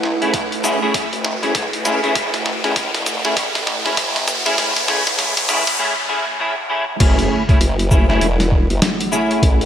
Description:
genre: glitch hop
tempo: 99 BPM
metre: 4/4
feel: swing 61% on 16ths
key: F# minor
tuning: A4 = 441 Hz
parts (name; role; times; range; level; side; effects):
- formant-sweep wobble bass; bass; 0.0-9.7 s; E1 to C#2; -22 LUFS; equal; chorus, high-pass filter
- boom bap sampler-style drum kit; drums; 0.0-9.7 s; crash cymbal, hi-hat, shaker, snare drum; -22 LUFS; equal; high-pass filter on hats, high-pass filter on snare, high-pass filter on perc, high-pass filter on cymbals, gated reverb
- riser, noise sweep and impact; sound effects; 0.0-9.4 s; none; -24 LUFS; equal; none
- ethereal airy pad; texture; 0.0-9.7 s; A3 to F#5; -29 LUFS; right 2 dB; ensemble chorus, built-in reverb, sidechain pumping
- clean electric guitar; stabs; 0.2-9.7 s; A3 to G#4; -20 LUFS; equal; ensemble chorus, sidechain pumping, digital delay
- electronic kick drum; drums; 0.3-9.6 s; none; -15 LUFS; equal; none
room: moderate lush hall reverb, RT60 1.8 s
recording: bright 1980s-style digital production, high-pass filter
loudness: -15 LUFS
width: side -9 dB against mid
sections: 0.0-7.0 A section; 7.0-9.7 B section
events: build-up 0.0-7.0; drum fill 0.0-5.8; riser 0.0-5.8; noise sweep 4.6-7.0; break 5.8-7.0; drop 7.0-9.7; impact 7.0-9.4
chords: 0.0 F#m7

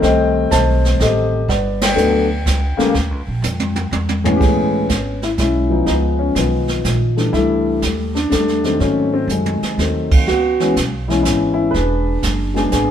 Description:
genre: jazz piano trio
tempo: 123 BPM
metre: 3/4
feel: swing 67% on 8ths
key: unclear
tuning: A4 = 443 Hz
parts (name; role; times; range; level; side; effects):
- dark grand piano; melody; 0.0-12.9 s; A2 to A5; -16 LUFS; left 2 dB; none
- upright bass; bass; 0.0-12.9 s; E1 to G#2; -20 LUFS; right 1 dB; none
- jazz brush drum kit; drums; 0.0-12.9 s; brushed snare drum, crash cymbal, hi-hat, kick drum, ride cymbal, snare drum, toms; -20 LUFS; right 2 dB; none
room: moderate stone room reverb, RT60 1.2 s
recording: band playing live in one room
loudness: -14 LUFS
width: side -9 dB against mid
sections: 0.0-4.4 A section; 4.4-12.9 B section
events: band accent 1.7; drum fill 3.4-4.4, 9.3-9.8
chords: 0.0 Am9b5; 1.5 Gmaj7; 2.9 Eb7; 3.9 E6; 4.4 Amaj9; 5.9 C#9; 7.3 C6; 8.8 G#7b9; 10.3 C#m7; 11.7 E9

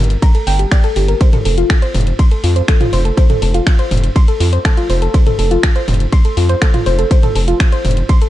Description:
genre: melodic techno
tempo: 122 BPM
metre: 4/4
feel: straight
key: unclear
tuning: A4 = 440 Hz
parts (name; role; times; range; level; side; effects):
- gritty driven synth bass; bass; 0.0-8.0 s; F1 to F2; -14 LUFS; equal; sidechain pumping
- house drum kit; drums; 0.0-8.3 s; finger snaps, hi-hat, ride cymbal, toms; -21 LUFS; equal; none
- soft round pluck; arpeggios; 0.2-8.3 s; F4 to C6; -18 LUFS; left 1 dB; chorus, sidechain pumping, ping-pong delay
- electronic kick drum; drums; 0.2-8.2 s; none; -11 LUFS; equal; none
room: little or no reverb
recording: dark, warm production, nothing above 10.3 kHz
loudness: -11 LUFS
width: side -14 dB against mid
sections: 0.0-8.3 A section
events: none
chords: 0.0 Gmadd9; 1.2 F

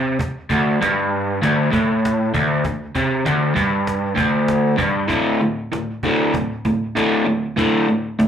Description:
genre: garage rock duo or trio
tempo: 97 BPM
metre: 4/4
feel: straight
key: unclear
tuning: A4 = 442 Hz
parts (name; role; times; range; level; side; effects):
- crunchy overdriven guitar; riff; 0.0-8.3 s; D2 to D3; -17 LUFS; equal; slapback echo
- cajon; drums; 0.2-8.3 s; none; -28 LUFS; equal; slapback echo
room: moderate club reverb, RT60 0.7 s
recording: live gig heard through the venue's PA, club reverb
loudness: -17 LUFS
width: side -8 dB against mid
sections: 0.0-5.1 A section; 5.1-8.3 B section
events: none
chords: 0.0 D5

